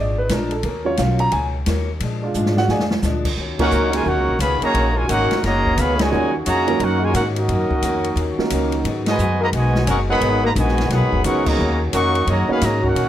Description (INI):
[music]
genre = jazz, big band swing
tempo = 175 BPM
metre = 4/4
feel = swing 63% on 8ths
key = Eb minor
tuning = A4 = 442 Hz
[part]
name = picked steel-string acoustic guitar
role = accompaniment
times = 0.0-13.1 s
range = Ab2 to Gb4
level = -30 LUFS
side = left 4 dB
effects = none
[part]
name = warm concert grand piano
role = accompaniment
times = 0.0-4.0, 6.1-8.8, 11.2-12.6 s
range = Gb3 to Bb5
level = -23 LUFS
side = right 3 dB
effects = none
[part]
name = upright bass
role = bass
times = 0.0-13.1 s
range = Gb1 to Bb2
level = -22 LUFS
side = equal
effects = none
[part]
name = open jazz drum kit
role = drums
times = 0.3-13.1 s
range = crash cymbal, hi-hat, kick drum, ride cymbal, snare drum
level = -26 LUFS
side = equal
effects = none
[part]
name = clear trombone section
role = sustained chords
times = 3.4-13.1 s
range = Eb3 to Gb4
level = -28 LUFS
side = left 1 dB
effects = none
[part]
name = warm trumpet section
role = melody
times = 3.6-13.1 s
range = Db4 to Db6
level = -21 LUFS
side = equal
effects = none
[part]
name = mellow trombone section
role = second line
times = 3.6-13.1 s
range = Bb2 to Gb4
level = -22 LUFS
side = equal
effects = none
[sound]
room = light reverb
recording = none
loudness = -16 LUFS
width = side -11 dB against mid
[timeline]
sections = 0.0-3.4 A section; 3.4-13.1 B section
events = grand piano solo 0.0-3.4; drum fill 2.4-3.0; band accent 3.6, 5.9, 9.0, 11.4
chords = 0.0 Bb7; 0.6 Ebm7; 2.0 Bb7; 3.4 Ebm7; 8.9 Abm7; 11.6 Ebm7